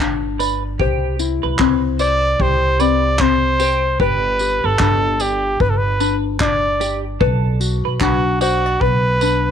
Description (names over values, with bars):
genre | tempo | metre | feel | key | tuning
acoustic pop | 75 BPM | 4/4 | swing 60% on 16ths | G major | A4 = 441 Hz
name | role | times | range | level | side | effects
ukulele | accompaniment | 0.0-9.5 s | C4 to D5 | -21 LUFS | left 17 dB | none
upright bass | bass | 0.0-9.5 s | G1 to C2 | -20 LUFS | right 1 dB | none
natural country drum kit | drums | 0.0-9.4 s | handclaps, kick drum, tambourine | -23 LUFS | right 1 dB | none
clean electric guitar | arpeggios | 0.4-9.4 s | G4 to D5 | -26 LUFS | right 14 dB | analog chorus
clear trumpet | melody | 2.0-9.5 s | F#4 to D5 | -18 LUFS | right 1 dB | none
room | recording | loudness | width
small room reverb | 1960s-style stereo with parts hard left and right | -15 LUFS | side -8 dB against mid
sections
0.0-9.5 A section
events
none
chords
0.0 G; 0.8 C; 4.0 G; 7.2 Bm